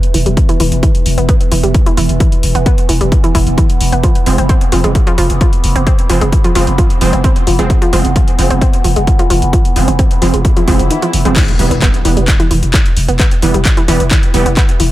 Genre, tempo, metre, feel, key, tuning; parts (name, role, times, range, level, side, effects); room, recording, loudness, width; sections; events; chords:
driving peak-time techno; 131 BPM; 4/4; straight; A4 = 440 Hz
overtone-sweeping drone; drone; 0.0-14.9 s; E3 to E4; -22 LUFS; right 1 dB; chorus, built-in reverb, sidechain pumping
punchy analog drum machine; drums; 0.0-14.9 s; crash cymbal, handclaps, hi-hat; -20 LUFS; left 1 dB; sidechain pumping on hats, sidechain pumping on cymbals
analog pluck; riff; 0.1-14.8 s; D#3 to C4; -18 LUFS; equal; chorus, tube saturation, sidechain pumping, digital delay
growling 808-style bass; bass; 0.1-14.9 s; E1 to F1; -14 LUFS; equal; tube saturation, sidechain pumping, low-pass filter
electronic kick drum; drums; 0.4-14.7 s; -12 LUFS; equal
rave stab; stabs; 4.3-14.5 s; E3 to C4; -18 LUFS; right 3 dB; chorus, built-in reverb, sidechain pumping, tape echo
swell and impact; sound effects; 10.6-13.2 s; -22 LUFS; left 1 dB
little or no reverb; -9 LUFS; side -15 dB against mid
0.0-11.4 A section; 11.4-14.9 B section
swell 10.6-11.4; kick drops out 10.9-11.4; drop 11.4-14.9; impact 11.4-13.2
0.0 E5; 4.0 Fm; 11.4 Em